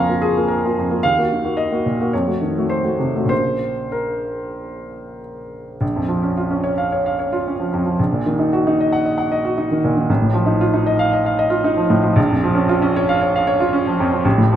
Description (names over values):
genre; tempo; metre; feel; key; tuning
classical, romantic character piece for solo piano; 93-118 BPM; 4/4; rubato; Bb minor; A4 = 443 Hz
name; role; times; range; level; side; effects
warm grand piano; solo; 0.0-14.6 s; A1 to Db6; -16 LUFS; equal; none
room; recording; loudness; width
moderate recital hall reverb, RT60 1.3 s; none; -16 LUFS; side -10 dB against mid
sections
0.0-5.8 A section; 5.8-14.6 B section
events
none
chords
0.0 Bb5; 1.0 Ebm; 2.1 F7b9 (rootless); 3.3 Bbm; 8.0 Ebm/Bb; 10.1 F7/A; 12.2 Bbm